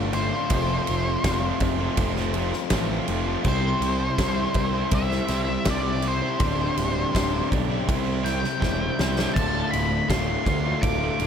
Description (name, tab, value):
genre	quiet-loud alternative rock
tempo	82 BPM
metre	4/4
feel	straight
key	unclear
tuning	A4 = 441 Hz
part	cranked stack guitar	riff	0.0-11.3 s	D2 to C5	-30 LUFS	right 11 dB	overdrive
part	crunchy overdriven guitar	riff	0.0-11.3 s	D2 to C5	-28 LUFS	left 12 dB	spring reverb
part	fuzz picked electric bass	bass	0.0-11.3 s	D1 to D2	-28 LUFS	right 1 dB	overdrive
part	octave-fuzz lead guitar	melody	0.1-11.3 s	C5 to D6	-29 LUFS	equal	distortion, analog delay
part	huge arena drum kit	drums	0.1-11.3 s	crash cymbal, kick drum, ride cymbal, snare drum	-27 LUFS	equal	none
room	light reverb, small room ambience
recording	none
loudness	-21 LUFS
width	side -8 dB against mid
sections	0.0-11.3 A section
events	drum fill 8.6-9.3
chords	0.0 Dm; 0.5 F; 3.5 C; 6.4 Gsus4/D; 7.9 C; 9.3 Dm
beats	| 0.51 1.24 1.98 2.71 | 3.45 4.19 4.92 5.66 | 6.40 7.13 7.87 8.61 | 9.35 10.08 10.82